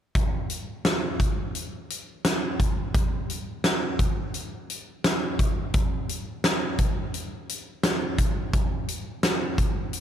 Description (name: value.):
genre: rock.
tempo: 86 BPM.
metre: 4/4.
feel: straight.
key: none.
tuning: none.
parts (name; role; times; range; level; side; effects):
huge arena drum kit; drums; 0.2-10.0 s; hi-hat, kick drum, snare drum; -24 LUFS; equal; none.
room: light reverb.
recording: none.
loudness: -24 LUFS.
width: side -9 dB against mid.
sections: 0.2-10.0 A section.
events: none.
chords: none.